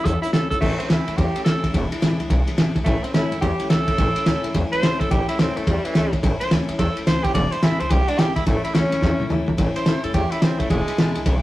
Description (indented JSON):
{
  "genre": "rockabilly",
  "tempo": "214 BPM",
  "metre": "4/4",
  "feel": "swing 63% on 8ths",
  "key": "A major",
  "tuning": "A4 = 440 Hz",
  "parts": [
    { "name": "raspy tenor saxophone", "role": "melody", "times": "0.0-11.2 s", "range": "E3 to D5", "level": "-24 LUFS", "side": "right 1 dB", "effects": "slapback echo" },
    { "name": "picked steel-string acoustic guitar", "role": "accompaniment", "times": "0.0-11.4 s", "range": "E2 to E4", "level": "-27 LUFS", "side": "left 2 dB", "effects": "none" },
    { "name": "upright bass", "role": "bass", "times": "0.1-11.4 s", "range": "E1 to F#2", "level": "-25 LUFS", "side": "equal", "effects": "none" },
    { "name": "cloth-damped thuddy drum kit", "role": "drums", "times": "0.1-11.3 s", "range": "crash cymbal, hi-hat, kick drum, ride cymbal, snare drum, toms", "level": "-21 LUFS", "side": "equal", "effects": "none" }
  ],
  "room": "light reverb",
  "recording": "rough rehearsal-room recording, warm saturation",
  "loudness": "-18 LUFS",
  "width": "side -16 dB against mid",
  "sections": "0.6-9.6 A section; 9.6-11.4 A section",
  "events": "tenor saxophone solo 0.6-11.4; drum fill 9.0-9.6",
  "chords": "0.0 A; 1.7 E7; 2.9 A; 7.3 E7; 8.5 A; 10.7 E7"
}